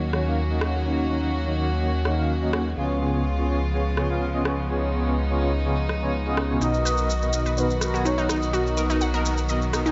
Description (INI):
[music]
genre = progressive house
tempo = 125 BPM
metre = 4/4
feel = straight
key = unclear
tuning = A4 = 440 Hz
[part]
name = rich chamber string section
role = sustained chords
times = 0.0-9.9 s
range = Db3 to Gb4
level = -33 LUFS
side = equal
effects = none
[part]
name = dark detuned saw bass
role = bass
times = 0.0-9.9 s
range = B1 to Eb2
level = -28 LUFS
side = equal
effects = none
[part]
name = soft supersaw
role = stabs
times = 0.1-9.9 s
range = Cb3 to Ab5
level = -29 LUFS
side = equal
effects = low-pass filter, dub echo
[part]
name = electronic rim click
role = drums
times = 0.1-9.8 s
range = none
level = -33 LUFS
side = equal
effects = none
[part]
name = expressive synth lead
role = melody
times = 6.6-8.8 s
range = B4 to D#5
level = -32 LUFS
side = equal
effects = subtle chorus, delay
[part]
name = unison pluck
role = arpeggios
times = 6.6-9.9 s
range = D#4 to F#5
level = -30 LUFS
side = equal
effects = vintage 12-bit sampler grit, dub echo
[part]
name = maracas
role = percussion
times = 6.6-9.9 s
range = none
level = -37 LUFS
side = equal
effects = none
[sound]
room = light reverb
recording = nothing above 7.7 kHz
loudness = -24 LUFS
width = mono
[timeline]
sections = 0.0-9.9 A section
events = filter sweep on supersaw synth 0.0-9.9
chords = 0.0 Ebm7; 2.8 Db7; 6.6 Bmaj7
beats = 0.37 | 0.85 1.33 1.81 2.29 | 2.77 3.25 3.73 4.21 | 4.69 5.17 5.65 6.13 | 6.61 7.09 7.57 8.05 | 8.53 9.01 9.49